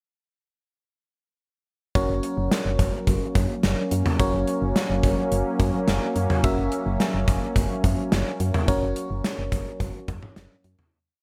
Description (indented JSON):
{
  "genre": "synth-pop",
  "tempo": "107 BPM",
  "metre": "4/4",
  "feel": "straight",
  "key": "unclear",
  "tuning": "A4 = 441 Hz",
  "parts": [
    { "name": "FM electric piano", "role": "accompaniment", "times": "2.0-10.9 s", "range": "C#4 to E5", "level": "-32 LUFS", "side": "equal", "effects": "chorus" },
    { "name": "brassy analog pad", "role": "sustained chords", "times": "2.0-10.9 s", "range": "F#3 to C#4", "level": "-31 LUFS", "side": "equal", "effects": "chorus" },
    { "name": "solid FM bass", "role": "bass", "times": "2.0-10.8 s", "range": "F#1 to F#2", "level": "-29 LUFS", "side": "equal", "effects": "none" },
    { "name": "gated 80s drum kit", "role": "drums", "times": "2.0-10.9 s", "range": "hi-hat, kick drum, snare drum, toms", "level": "-27 LUFS", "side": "equal", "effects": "none" }
  ],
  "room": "light reverb, small room reverb",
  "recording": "none",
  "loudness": "-24 LUFS",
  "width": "mono",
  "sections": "2.0-10.9 verse",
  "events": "fade-out 8.7-10.9",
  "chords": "2.0 F#"
}